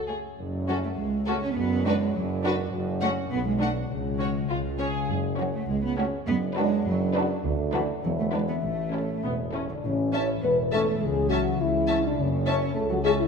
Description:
cinematic, playful, whimsical film cue; 102 BPM; 2/4; straight; F# minor, A major from 7.4 s; A4 = 441 Hz
dark studio violin section; second line; 0.0-13.1 s; E4 to E5; -34 LUFS; left 2 dB
concert harp; arpeggios; 0.0-13.3 s; F#2 to D6; -32 LUFS; left 9 dB
clear chamber double bass section; bass; 0.0-13.2 s; E1 to F#2; -32 LUFS; right 3 dB
warm studio cello section; bass; 0.0-13.2 s; C#2 to C#4; -30 LUFS; right 4 dB
clear studio violin section; melody; 0.1-13.1 s; A4 to A5; -37 LUFS; left 5 dB
warm studio viola section; accompaniment; 0.1-13.1 s; A3 to D4; -34 LUFS; right 1 dB
warm tuba; bass; 0.4-13.2 s; E1 to D2; -33 LUFS; right 4 dB
mellow French horn section; sustained chords; 9.7-13.3 s; C#4 to C#5; -25 LUFS; left 2 dB
moderate scoring stage reverb, RT60 1.8 s; minimal, uncompressed stereo recording; -24 LUFS; side -5 dB against mid
0.4-9.8 A section; 9.8-13.3 B section
0.4 F#m; 1.6 Bm/F#; 2.7 F#m; 3.3 Bm; 3.9 C#sus4; 4.5 C#; 5.1 F#m; 6.3 Bm/F#; 7.4 Bm/D; 8.0 E7(no3); 8.6 A; 11.0 A/C#; 12.2 F#m7

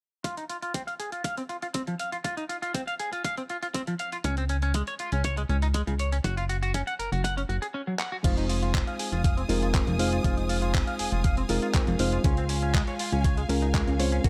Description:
nu-disco, nu disco; 120 BPM; 4/4; straight; F phrygian; A4 = 440 Hz
clean electric guitar; riff; 0.2-14.3 s; Db3 to Gb5; -34 LUFS; equal; lush chorus, low-pass filter
dusty soul sampler-style drum kit; drums; 0.2-14.3 s; crash cymbal, handclaps, hi-hat; -38 LUFS; equal
electronic kick drum; drums; 0.2-14.3 s; -29 LUFS; equal; overdrive, high-pass filter on kick, high-pass filter on room
chorused synth bass; bass; 4.2-14.3 s; F1 to Db2; -30 LUFS; equal
reed electric piano; accompaniment; 8.2-14.3 s; Gb3 to C6; -32 LUFS; equal; sidechain pumping, delay
rich symphonic string section; sustained chords; 8.2-14.3 s; Bb4 to Eb6; -40 LUFS; equal; sidechain pumping
digital ambience; -28 LUFS; mono
0.2-8.2 A section; 8.2-14.3 B section
filter sweep on clean electric guitar 0.2-8.2, 8.2-14.3; drum fill 8.0
0.2 N.C.; 8.2 Fm7; 12.2 Dbmaj7

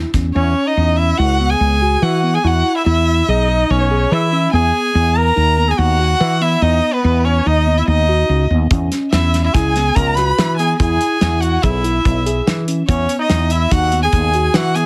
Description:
progressive instrumental, band music in an uneven meter; 144 BPM; 5/4; straight; A4 = 440 Hz
mellow tine electric piano; arpeggios; 0.0-14.9 s; B3 to G#4; -24 LUFS; equal
woody fretless electric bass; bass; 0.0-14.9 s; B1 to E3; -19 LUFS; equal
warm soul drum kit; drums; 0.1-0.2, 8.7-14.9 s; hi-hat, kick drum, snare drum; -21 LUFS; equal
rich violin; melody; 0.3-14.9 s; B4 to B5; -22 LUFS; equal; tape echo
clear flugelhorn; second line; 0.4-14.9 s; B3 to B4; -24 LUFS; equal
light reverb; heavily compressed radio sound; -15 LUFS; mono
0.4-14.9 A section
0.4 F#9sus4; 2.4 Emaj7; 4.5 G#m9; 8.7 F#9sus4; 10.8 E; 12.9 G#m7

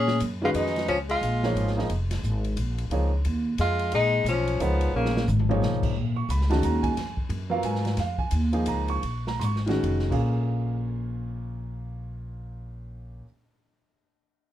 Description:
modal jazz; 124-178 BPM; 3/4; swing 62% on 8ths; Bb phrygian; A4 = 442 Hz
clear tenor saxophone; melody; 0.0-5.3 s; Bb3 to Ab4; -27 LUFS; equal
warm tenor saxophone; second line; 0.0-5.3 s; Db3 to Db4; -29 LUFS; left 5 dB
upright bass; bass; 0.0-13.2 s; F1 to Bb2; -26 LUFS; equal
open jazz drum kit; drums; 0.1-10.2 s; crash cymbal, hi-hat, kick drum, ride cymbal, snare drum, toms; -34 LUFS; left 1 dB
warm baby grand piano; accompaniment; 0.4-13.3 s; Bb2 to Db6; -29 LUFS; right 2 dB
light reverb; -23 LUFS; side -12 dB against mid
0.0-5.9 A section; 5.9-10.3 B section; 10.3-13.2 C section
drum fill 4.9-5.6; slowing down 8.0-10.3
0.0 Bbm7

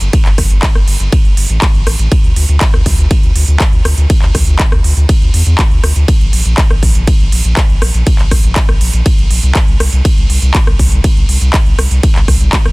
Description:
progressive house; 121 BPM; 4/4; straight; G dorian; A4 = 438 Hz
round analog bass; bass; 0.0-12.7 s; G1 to E2; -12 LUFS; equal; tube saturation, sidechain pumping
big-room dance drum kit; drums; 0.0-12.7 s; handclaps, hi-hat, ride cymbal, rim click; -17 LUFS; equal
electronic kick drum; drums; 0.1-12.6 s; -10 LUFS; equal
digital ambience; dense, heavily limited modern master; -8 LUFS; side -25 dB against mid
0.0-12.7 A section

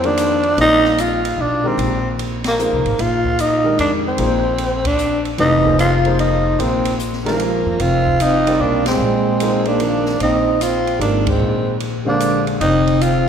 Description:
modal jazz; 150 BPM; 3/4; swing 65% on 8ths; Bb mixolydian; A4 = 439 Hz
growling tenor saxophone; melody; 0.0-13.3 s; Bb3 to F4; -17 LUFS; equal
warm grand piano; accompaniment; 0.0-13.3 s; D3 to F5; -23 LUFS; left 1 dB
upright bass; bass; 0.0-13.3 s; F1 to F2; -21 LUFS; left 1 dB
open jazz drum kit; drums; 0.0-13.1 s; hi-hat, kick drum, ride cymbal, snare drum; -27 LUFS; equal
growling trombone; second line; 7.3-13.3 s; F3 to C4; -21 LUFS; right 5 dB
wet concert hall reverb, RT60 2.0 s; recorded in a church or concert hall; -14 LUFS; side -7 dB against mid
0.0-13.3 A section
band accent 2.4, 4.8, 8.8, 11.2
0.0 Bb9sus4

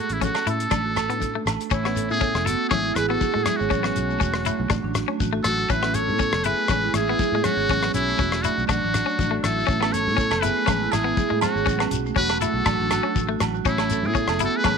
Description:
highlife guitar band; 121 BPM; 4/4; swing 54% on 16ths; A major; A4 = 440 Hz
trumpet with metal mute; melody; 0.0-14.8 s; E4 to C#5; -25 LUFS; equal
clean electric guitar; accompaniment; 0.0-14.8 s; G#3 to E4; -29 LUFS; left 16 dB
marimba with hard mallets; arpeggios; 0.0-14.7 s; F#3 to A4; -27 LUFS; right 14 dB; slapback echo
fingered electric bass; bass; 0.1-14.8 s; E1 to A2; -28 LUFS; equal
damped 70s drum kit; drums; 0.1-14.8 s; hi-hat, kick drum, rim click; -27 LUFS; left 3 dB
shekere; percussion; 0.1-14.8 s; -32 LUFS; left 6 dB
congas; percussion; 0.2-14.8 s; -33 LUFS; left 14 dB
agogo bells; percussion; 0.3-1.6, 9.8-14.8 s; -30 LUFS; right 15 dB
breathy alto saxophone; second line; 1.7-14.8 s; C#4 to A4; -31 LUFS; left 13 dB
light reverb; 1960s-style stereo with parts hard left and right; -20 LUFS; side -6 dB against mid
0.0-1.7 A section; 1.7-14.8 B section
0.0 F#m/A; 0.7 D5/A; 1.7 Aadd9; 2.7 E/A; 3.7 F#m/A; 4.7 D/A; 5.7 Aadd9; 6.7 E/A; 7.7 F#m/A; 8.7 D/A; 9.7 Aadd9; 10.7 E/A; 11.7 F#m/A; 12.7 D/A; 13.7 Aadd9

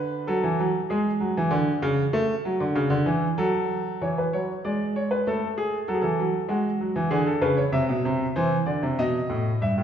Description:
classical, baroque-style two-part invention for grand piano; 97 BPM; 3/4; straight; A4 = 443 Hz
bright grand piano; solo; 0.0-9.8 s; G2 to E5; -22 LUFS; equal
wet recital hall reverb, RT60 1.5 s; recorded in a church or concert hall, nothing above 7.7 kHz; -22 LUFS; side -8 dB against mid
0.0-4.0 A section; 4.0-9.8 B section
0.3 F#m; 1.5 C#5; 2.1 F#m; 4.0 E; 5.3 N.C.; 5.9 Eadd9; 7.1 G#dim/D; 7.7 C; 9.0 B7

